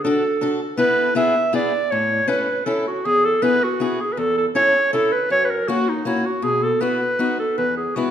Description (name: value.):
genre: alpine folk.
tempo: 159 BPM.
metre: 3/4.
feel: swing 53% on 8ths.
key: A major, E major from 3.0 s.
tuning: A4 = 440 Hz.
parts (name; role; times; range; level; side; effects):
warm clarinet; melody; 0.0-8.1 s; D#4 to E5; -18 LUFS; right 1 dB; none.
fingerpicked steel-string acoustic guitar; accompaniment; 0.0-8.1 s; E2 to A4; -23 LUFS; left 3 dB; none.
room: wet recital hall reverb, RT60 1.7 s.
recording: minimal, uncompressed stereo recording.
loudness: -17 LUFS.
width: side -9 dB against mid.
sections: 0.0-3.0 A section; 3.0-8.1 B section.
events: none.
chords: 0.0 D; 0.8 Esus4; 1.2 E; 1.9 A; 3.0 Eadd9; 4.2 A/E; 5.3 F#; 6.4 Bsus4; 7.2 B; 7.6 E.